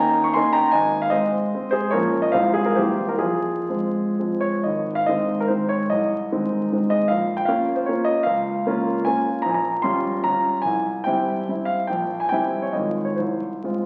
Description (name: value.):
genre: classical, romantic triple-time dance for piano with dotted rhythms.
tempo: 118-166 BPM.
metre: 3/4.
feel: rubato.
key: F minor, Ab major from 4.7 s.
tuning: A4 = 438 Hz.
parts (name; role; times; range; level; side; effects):
warm grand piano; solo; 0.0-13.9 s; Ab1 to Db6; -22 LUFS; equal; none.
room: wet recital hall reverb, RT60 1.4 s.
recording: very old 78 rpm record, vinyl crackle.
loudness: -22 LUFS.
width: mono.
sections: 0.0-4.7 A section; 4.7-13.9 B section.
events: none.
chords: 0.0 Eb7; 0.7 Ab; 1.9 Bbm; 2.3 Fm/C; 2.8 C7; 3.2 Fm; 4.7 Ab; 5.9 Ab/C; 7.1 Bbm; 8.3 Bbm/Db; 9.4 Gm7b5/Bb; 10.6 C; 11.9 C7/Bb; 12.7 Fm/Ab; 13.2 Fm/C.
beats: 0.35 | 0.74 1.13 1.53 | 1.93 2.34 2.78 | 3.23 3.71 4.20 | 4.66 5.09 5.51 | 5.92 6.33 6.74 | 7.12 7.49 7.88 | 8.26 8.65 9.06 | 9.45 9.85 10.26 | 10.65 11.06 11.48 | 11.88 12.31 12.74 | 13.18 13.65.